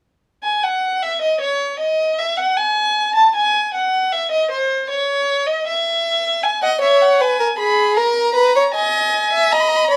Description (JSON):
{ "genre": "classical, baroque-style fugue for string quartet", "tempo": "78 BPM", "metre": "4/4", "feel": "straight", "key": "unclear", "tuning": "A4 = 444 Hz", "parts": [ { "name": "rich violin", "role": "melody", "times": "0.4-10.0 s", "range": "B#4 to B5", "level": "-19 LUFS", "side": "equal", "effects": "none" }, { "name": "warm violin", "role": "second line", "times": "6.6-10.0 s", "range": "G#4 to E5", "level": "-17 LUFS", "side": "equal", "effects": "none" } ], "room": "moderate large studio reverb, RT60 0.9 s", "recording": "none", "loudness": "-17 LUFS", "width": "mono", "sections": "0.2-10.0 A section", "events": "none", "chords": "0.2 N.C.; 6.4 G#m; 8.0 A#7(no3)" }